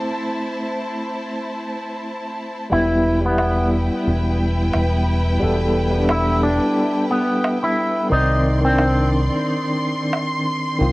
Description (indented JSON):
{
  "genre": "trip hop",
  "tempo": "89 BPM",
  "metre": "4/4",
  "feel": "swing 58% on 16ths",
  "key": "E minor",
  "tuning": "A4 = 440 Hz",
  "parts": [
    { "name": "barky tine electric piano", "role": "accompaniment", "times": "0.0-10.9 s", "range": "Eb3 to D5", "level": "-22 LUFS", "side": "equal", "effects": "overdrive, fast tremolo, cassette tape" },
    { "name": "clear studio violin section", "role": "sustained chords", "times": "0.0-10.9 s", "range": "E4 to Eb6", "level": "-27 LUFS", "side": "equal", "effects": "cassette tape" },
    { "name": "electric guitar with an envelope filter", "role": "melody", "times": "2.7-9.1 s", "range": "B3 to E4", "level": "-22 LUFS", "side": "equal", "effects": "cassette tape, dub echo" },
    { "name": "deep dub fingered electric bass", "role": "bass", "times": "2.7-10.9 s", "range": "E1 to C2", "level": "-20 LUFS", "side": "equal", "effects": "none" },
    { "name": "darbuka", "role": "percussion", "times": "3.4-10.3 s", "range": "none", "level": "-26 LUFS", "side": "right 2 dB", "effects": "none" }
  ],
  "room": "light reverb, small room ambience",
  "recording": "home recording on cassette",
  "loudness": "-17 LUFS",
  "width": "side -20 dB against mid",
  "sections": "0.0-2.7 A section; 2.7-10.9 B section",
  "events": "break 0.0-2.7",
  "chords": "0.0 Am; 2.7 Em; 8.1 Cmadd9"
}